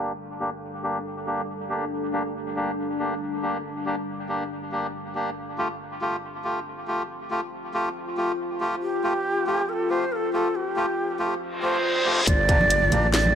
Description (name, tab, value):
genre	deep dubstep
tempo	139 BPM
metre	4/4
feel	swing 55% on 16ths, half-time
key	G minor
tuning	A4 = 440 Hz
part	deep dark ambient pad	sustained chords	0.0-13.3 s	G3 to G5	-31 LUFS	left 3 dB	chorus, built-in reverb
part	melodica	stabs	0.0-13.1 s	A3 to G4	-28 LUFS	equal	low-pass filter, dub echo
part	breathy shakuhachi	melody	8.8-13.3 s	G4 to D5	-24 LUFS	right 2 dB	dub echo
part	reverse cymbal and impact	sound effects	11.6-13.3 s	none	-27 LUFS	left 1 dB	none
part	wobble bass	bass	12.3-13.3 s	G1 to A1	-24 LUFS	equal	chorus
part	electronic kick drum	drums	12.3-12.6 s	none	-21 LUFS	equal	none
part	garage drum kit	drums	12.3-13.2 s	handclaps, hi-hat, snare drum	-25 LUFS	equal	none
part	congas	percussion	12.6-13.3 s	none	-27 LUFS	right 1 dB	none
room	moderate digital room reverb, RT60 0.9 s, studio ambience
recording	dry, gritty hardware recording, faint mains hum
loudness	-23 LUFS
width	side -9 dB against mid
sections	0.0-12.3 A section; 12.3-13.3 B section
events	filter sweep on melodica 0.0-12.3; filter sweep on ambient pad 0.0-12.3; reverse cymbal 11.6-12.3; drop 12.3-13.3; impact 12.3-13.3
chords	0.0 Gm; 5.4 Fadd9; 12.3 Gm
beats	| 0.19 0.62 1.05 1.48 | 1.91 2.35 2.78 3.21 | 3.64 4.07 4.50 4.93 | 5.37 5.80 6.23 6.66 | 7.09 7.53 7.96 8.39 | 8.82 9.25 9.68 10.12 | 10.55 10.98 11.41 11.84 | 12.27 12.71 13.14